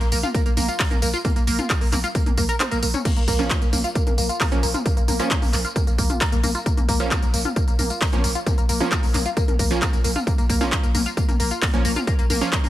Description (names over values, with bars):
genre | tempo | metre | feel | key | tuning
driving peak-time techno | 133 BPM | 4/4 | straight | Bb minor | A4 = 440 Hz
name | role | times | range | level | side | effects
tight sequenced synth | riff | 0.0-12.7 s | Bb3 to Bb4 | -26 LUFS | left 1 dB | chorus, phaser, tube saturation, sidechain pumping, tape echo
growling 808-style bass | bass | 0.0-12.7 s | Bb1 | -26 LUFS | equal | overdrive, sidechain pumping, low-pass filter
techno drum kit | drums | 0.0-12.7 s | crash cymbal, handclaps, hi-hat, tambourine, toms | -25 LUFS | left 1 dB | sidechain pumping on hats, sidechain pumping on perc, sidechain pumping on toms, sidechain pumping on cymbals
electronic kick drum | drums | 0.3-12.6 s | none | -21 LUFS | equal | none
supersaw stab | stabs | 3.4-12.5 s | F3 to Db4 | -28 LUFS | right 4 dB | sidechain pumping, tape echo
room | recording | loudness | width
little or no reverb | none | -18 LUFS | side -14 dB against mid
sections
0.0-12.7 A section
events
kick drops out 2.6-3.1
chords
0.0 Bb5